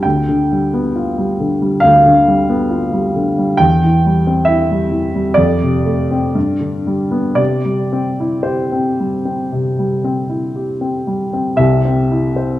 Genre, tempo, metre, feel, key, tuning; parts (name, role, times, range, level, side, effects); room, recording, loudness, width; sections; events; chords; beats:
classical, romantic nocturne for solo piano; 55-69 BPM; 4/4; rubato; C major; A4 = 437 Hz
warm baby grand piano; solo; 0.0-12.6 s; C2 to G5; -13 LUFS; equal
moderate recital hall reverb, RT60 1.4 s; -13 LUFS; side -14 dB against mid
0.0-11.6 A section
0.0 G7/D; 3.6 C/E; 5.4 Dm7/F; 6.4 G; 7.4 C
| 0.04 0.94 1.83 2.71 | 3.60 4.48 5.39 6.35 | 7.39 8.47 9.53 10.56 | 11.61